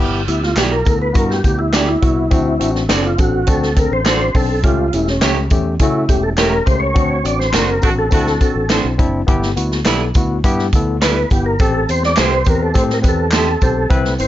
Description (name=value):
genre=uptempo 1960s-style soul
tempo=104 BPM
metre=4/4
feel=straight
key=G major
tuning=A4 = 437 Hz
part: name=tine electric piano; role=accompaniment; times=0.0-14.3 s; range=A3 to C5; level=-21 LUFS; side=left 3 dB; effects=medium stereo tremolo, plate reverb
part: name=fingered electric bass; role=bass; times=0.0-14.3 s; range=E1 to C#3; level=-20 LUFS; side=equal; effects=none
part: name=tonewheel organ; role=melody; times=0.3-14.3 s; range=C#4 to D5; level=-19 LUFS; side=equal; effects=chorus vibrato, slow rotary speaker, plate reverb, tape echo
part: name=swinging big-band drum kit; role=drums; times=0.3-14.3 s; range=hi-hat, kick drum, snare drum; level=-17 LUFS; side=equal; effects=none
part: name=tambourine and handclaps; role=percussion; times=0.3-14.3 s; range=none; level=-27 LUFS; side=left 1 dB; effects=none
part: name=electric guitar through a small old amp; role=stabs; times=0.6-13.5 s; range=G3 to D5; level=-21 LUFS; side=right 6 dB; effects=plate reverb
part: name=warm horn section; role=second line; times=7.5-8.5 s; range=C4 to F#4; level=-23 LUFS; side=right 2 dB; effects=plate reverb
room=light reverb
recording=nothing above 7.5 kHz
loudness=-13 LUFS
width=side -13 dB against mid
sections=0.0-14.3 A section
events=tonewheel organ solo 0.0-14.3; band accent 7.0-9.3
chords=0.0 G6; 2.3 D7; 4.6 A7; 7.0 D7; 9.3 G6; 11.6 Am7